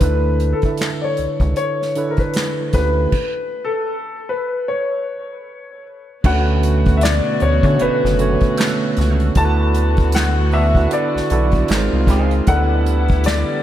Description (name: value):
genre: R&B, neo-soul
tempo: 77 BPM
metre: 4/4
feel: swing 59% on 16ths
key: unclear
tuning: A4 = 441 Hz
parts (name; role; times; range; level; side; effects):
- warm grand piano; melody; 0.0-13.6 s; A4 to A5; -22 LUFS; left 3 dB; lush chorus, diffuse ambient delay
- barky tine electric piano; accompaniment; 0.0-13.6 s; D3 to E5; -21 LUFS; right 5 dB; overdrive
- rubbery square bass; bass; 0.0-13.4 s; F#1 to D3; -17 LUFS; equal; none
- unplugged drum kit; drums; 0.0-13.5 s; crash cymbal, handclaps, hi-hat, kick drum, snare drum; -20 LUFS; equal; none
- warm chamber string section; sustained chords; 6.2-13.6 s; B2 to F#4; -25 LUFS; left 2 dB; none
- electric guitar through a small old amp; second line; 7.8-12.3 s; A3 to D#5; -31 LUFS; right 3 dB; none
room: moderate plate reverb, RT60 2.8 s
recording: dreamy mix soaked in reverb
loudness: -15 LUFS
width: side -12 dB against mid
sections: 0.0-6.2 A section; 6.2-13.6 B section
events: stop 3.1-6.2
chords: 0.0 Bm11; 2.7 A9/D; 6.2 Bm9/D; 9.4 D6; 11.7 G#6; 12.5 G6/D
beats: | 0.01 0.79 1.57 2.35 | 3.13 3.91 4.69 5.46 | 6.24 7.02 7.80 8.58 | 9.36 10.14 10.92 11.70 | 12.48 13.26